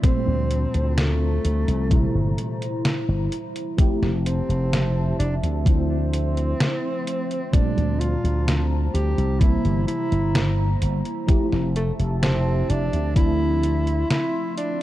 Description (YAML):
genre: vaporwave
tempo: 64 BPM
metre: 4/4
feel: straight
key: F major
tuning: A4 = 440 Hz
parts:
  - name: breathy tenor saxophone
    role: melody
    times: 0.0-14.8 s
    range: A3 to G4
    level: -28 LUFS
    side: right 1 dB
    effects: tape echo
  - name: mellow FM electric piano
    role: accompaniment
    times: 0.0-14.8 s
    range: Bb2 to G4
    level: -28 LUFS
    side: equal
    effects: ensemble chorus
  - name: warbly tape-like pad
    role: sustained chords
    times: 0.0-14.8 s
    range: F3 to C6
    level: -33 LUFS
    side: right 1 dB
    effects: chorus, built-in reverb
  - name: slap bass with an envelope filter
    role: bass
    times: 0.0-14.0 s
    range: F1 to D2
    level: -22 LUFS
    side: equal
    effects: none
  - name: detuned 8-bit digital drum machine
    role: drums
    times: 0.0-14.8 s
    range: hi-hat, snare drum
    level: -26 LUFS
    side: equal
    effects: none
  - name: electronic kick drum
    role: drums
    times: 0.0-13.4 s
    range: none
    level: -18 LUFS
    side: equal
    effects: none
room: light reverb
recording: dark, warm production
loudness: -20 LUFS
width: side -14 dB against mid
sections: 0.0-14.8 A section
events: none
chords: 0.0 Gm11/D; 1.9 C7; 3.8 Fmaj9; 5.7 Dm9; 7.5 Gm11/D; 9.4 C7; 11.3 Fmaj9; 13.2 Dm9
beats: | 0.04 0.98 1.91 2.85 | 3.79 4.73 5.66 6.60 | 7.54 8.48 9.41 10.35 | 11.29 12.23 13.16 14.10